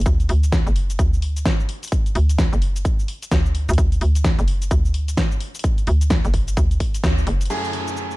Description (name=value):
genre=bass house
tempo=129 BPM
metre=4/4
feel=swing 61% on 16ths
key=unclear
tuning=A4 = 440 Hz
part: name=hollow knocking FM bass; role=bass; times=0.0-7.5 s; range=F#1 to D2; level=-19 LUFS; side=equal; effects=tube saturation, sidechain pumping
part: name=big-room dance drum kit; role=drums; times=0.0-8.2 s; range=crash cymbal, hi-hat, shaker, snare drum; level=-27 LUFS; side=equal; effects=studio reverb
part: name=electronic kick drum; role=drums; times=0.1-7.2 s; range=none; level=-20 LUFS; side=equal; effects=studio reverb
part: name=clear baby grand piano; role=stabs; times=7.5-8.2 s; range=F#2 to G#4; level=-24 LUFS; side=right 1 dB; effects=sidechain pumping, digital delay
part: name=downlifter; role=sound effects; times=7.5-8.2 s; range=none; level=-29 LUFS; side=right 1 dB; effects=none
room=little or no reverb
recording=dark, warm production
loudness=-17 LUFS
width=side -20 dB against mid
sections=0.0-7.5 A section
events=drop 0.0-7.5; band accent 7.0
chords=0.1 D; 7.5 F#m7